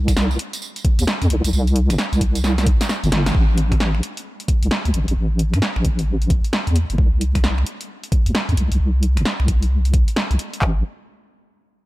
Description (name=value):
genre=UK garage, two-step garage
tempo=132 BPM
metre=4/4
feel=swing 63% on 16ths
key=unclear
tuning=A4 = 439 Hz
part: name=deep soft wobble bass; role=bass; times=0.0-10.8 s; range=G1 to A2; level=-17 LUFS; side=equal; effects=chorus, sidechain pumping
part: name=garage drum kit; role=drums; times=0.1-10.8 s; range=handclaps, kick drum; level=-18 LUFS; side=equal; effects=none
part: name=punchy analog drum machine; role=drums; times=0.1-10.6 s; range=finger snaps, hi-hat, snare drum, tambourine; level=-24 LUFS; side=equal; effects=none
room=little or no reverb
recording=none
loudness=-17 LUFS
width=side -18 dB against mid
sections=0.0-3.3 A section; 3.3-10.6 B section; 10.6-11.9 C section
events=drop 0.0-3.3; drum fill 2.4-3.3; band accent 3.2; filter sweep on wobble bass 3.3-10.6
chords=none